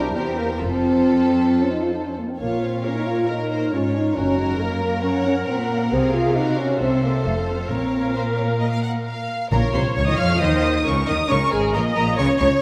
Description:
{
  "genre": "quick classical-period movement for symphony orchestra",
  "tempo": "135 BPM",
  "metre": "4/4",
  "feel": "straight",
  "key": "Bb minor",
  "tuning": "A4 = 439 Hz",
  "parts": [
    { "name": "dark studio violin section", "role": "melody", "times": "0.0-12.5 s", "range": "C5 to F6", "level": "-32 LUFS", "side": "equal", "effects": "none" },
    { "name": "rich studio violin section", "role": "second line", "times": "0.0-12.6 s", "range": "Ab4 to Gb5", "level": "-31 LUFS", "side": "equal", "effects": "none" },
    { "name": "rich studio viola section", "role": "accompaniment", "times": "0.0-12.6 s", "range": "F4 to Eb5", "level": "-30 LUFS", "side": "equal", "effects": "none" },
    { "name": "dark French horn section", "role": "sustained chords", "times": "0.0-12.5 s", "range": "Ab3 to F4", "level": "-24 LUFS", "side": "equal", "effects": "none" },
    { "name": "rich studio cello section", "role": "bass", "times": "0.0-12.5 s", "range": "C2 to F3", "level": "-28 LUFS", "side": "equal", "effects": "none" },
    { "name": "rich studio double bass section", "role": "bass", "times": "0.0-12.5 s", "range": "F1 to F2", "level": "-28 LUFS", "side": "equal", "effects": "none" },
    { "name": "timpani", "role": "percussion", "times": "9.5-10.2 s", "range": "Bb2", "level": "-30 LUFS", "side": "equal", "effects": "none" }
  ],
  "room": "wet scoring stage reverb, RT60 1.9 s",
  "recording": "none",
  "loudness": "-21 LUFS",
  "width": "mono",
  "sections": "0.0-9.5 A section; 9.5-12.6 B section",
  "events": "none",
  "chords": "0.0 C7; 0.6 F; 2.4 Bbm; 4.2 Gb; 5.9 Ab13/C; 6.8 C7; 7.3 F; 7.7 Bbm; 11.3 Bbm11/Ab",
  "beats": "0.16 | 0.60 1.05 1.50 1.95 | 2.40 2.85 3.29 3.73 | 4.17 4.61 5.05 5.49 | 5.93 6.37 6.81 7.26 | 7.71 8.16 8.62 9.07 | 9.52 9.97 10.42 10.86 | 11.30 11.74 12.18 12.62"
}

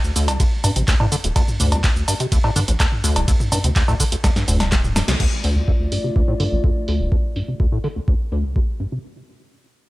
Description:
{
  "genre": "acid house",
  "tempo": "125 BPM",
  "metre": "4/4",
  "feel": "straight",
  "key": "D minor",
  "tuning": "A4 = 439 Hz",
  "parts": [
    { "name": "saturated sub bass", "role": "bass", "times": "0.0-7.1 s", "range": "D1 to G2", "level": "-22 LUFS", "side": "equal", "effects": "sidechain pumping" },
    { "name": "punchy analog drum machine", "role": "drums", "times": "0.0-8.9 s", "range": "cowbell, crash cymbal, handclaps, hi-hat, ride cymbal, shaker, snare drum, toms", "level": "-22 LUFS", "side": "equal", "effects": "low-pass filter on hats, low-pass filter on perc, low-pass filter on snare, low-pass filter on cymbals, low-pass filter on toms" },
    { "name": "deep acid bass", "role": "riff", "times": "0.2-9.0 s", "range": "C2 to D3", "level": "-22 LUFS", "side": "equal", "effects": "overdrive, analog chorus" },
    { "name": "electronic kick drum", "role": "drums", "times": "0.4-8.7 s", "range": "none", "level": "-19 LUFS", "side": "equal", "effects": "overdrive" },
    { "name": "dark analog pad", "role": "sustained chords", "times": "5.2-9.0 s", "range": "A3 to D5", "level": "-28 LUFS", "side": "equal", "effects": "chorus, sidechain pumping" }
  ],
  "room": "little or no reverb",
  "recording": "none",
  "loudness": "-17 LUFS",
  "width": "side -19 dB against mid",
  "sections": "0.0-5.2 A section; 5.2-9.0 B section",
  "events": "drop 0.0-5.2; drum fill 4.2-5.2; band accent 5.1; filter sweep on acid bass 5.2-9.0",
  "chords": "0.0 D5; 5.2 Dm",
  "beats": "0.40 0.88 | 1.36 1.84 2.32 2.80 | 3.28 3.76 4.24 4.72 | 5.20 5.68 6.16 6.64 | 7.12 7.60 8.08 8.56"
}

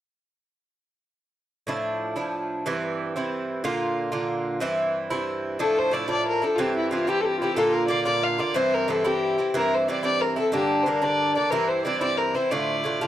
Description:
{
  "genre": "celtic folk, Celtic jig",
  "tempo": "122 BPM (dotted quarters)",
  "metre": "6/8",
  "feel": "straight",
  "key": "unclear",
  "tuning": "A4 = 440 Hz",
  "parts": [
    { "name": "Irish bouzouki", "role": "accompaniment", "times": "1.7-13.1 s", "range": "G2 to F4", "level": "-25 LUFS", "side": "right 1 dB", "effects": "none" },
    { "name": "warm fiddle", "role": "melody", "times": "5.6-13.1 s", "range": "E4 to F5", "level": "-23 LUFS", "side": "left 2 dB", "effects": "tape echo" }
  ],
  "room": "light reverb",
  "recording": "dry, close 1970s-style studio recording",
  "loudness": "-22 LUFS",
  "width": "side -12 dB against mid",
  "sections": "1.7-5.6 A section; 5.6-13.1 B section",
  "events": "none",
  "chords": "1.7 Dmadd9; 2.6 C; 3.6 Bb; 4.6 C; 5.6 Dmadd9; 6.6 C; 7.6 Bb; 8.6 C; 10.5 Gm; 11.5 C; 12.5 Dm",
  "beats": "| 1.67 2.16 | 2.65 3.14 | 3.63 4.13 | 4.62 5.11 | 5.60 6.09 | 6.59 7.08 | 7.57 8.06 | 8.56 9.05 | 9.54 10.04 | 10.53 11.02 | 11.52 12.01 | 12.51 13.00"
}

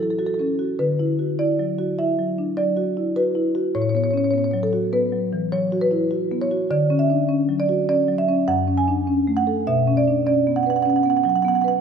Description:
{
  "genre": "classical, contemporary piece for solo marimba",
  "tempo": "101 BPM",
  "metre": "5/4",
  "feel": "rubato",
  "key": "unclear",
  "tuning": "A4 = 440 Hz",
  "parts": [
    { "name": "marimba with medium mallets", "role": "solo", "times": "0.0-11.8 s", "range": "F#2 to G#5", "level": "-18 LUFS", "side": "right 1 dB", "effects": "none" }
  ],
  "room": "moderate concert hall reverb, RT60 2.2 s",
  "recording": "none",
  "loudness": "-18 LUFS",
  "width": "side -6 dB against mid",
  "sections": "0.0-11.8 A section",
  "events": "none",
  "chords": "0.0 A6; 0.8 D69; 3.7 A69; 6.7 Dmaj7; 8.5 F#m; 9.7 Bmadd9",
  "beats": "0.19 | 0.80 1.40 1.99 2.57 3.15 | 3.75 4.34 4.94 5.53 6.12 | 6.71 7.30 7.89 8.48 9.07 | 9.67 10.27 10.86 11.45"
}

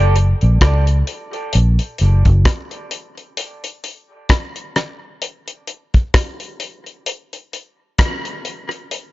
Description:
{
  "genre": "dub reggae",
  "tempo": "65 BPM",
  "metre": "4/4",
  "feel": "swing 56% on 16ths",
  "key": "unclear",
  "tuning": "A4 = 442 Hz",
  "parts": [
    { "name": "vintage muted fingered electric bass", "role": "bass", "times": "0.0-2.4 s", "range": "F#1 to C#2", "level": "-12 LUFS", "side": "equal", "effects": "none" },
    { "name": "damped 70s drum kit", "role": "drums", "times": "0.2-9.1 s", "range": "hi-hat, kick drum, rim click", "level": "-17 LUFS", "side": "equal", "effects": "none" }
  ],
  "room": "small room ambience",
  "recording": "echo-heavy mix, nothing above 7.6 kHz",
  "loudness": "-15 LUFS",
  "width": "side -18 dB against mid",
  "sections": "0.0-9.1 A section",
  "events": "break 3.4-9.1",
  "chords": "none",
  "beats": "0.61 1.53 2.46 | 3.38 4.30 5.22 6.15 | 7.07 7.99 8.91"
}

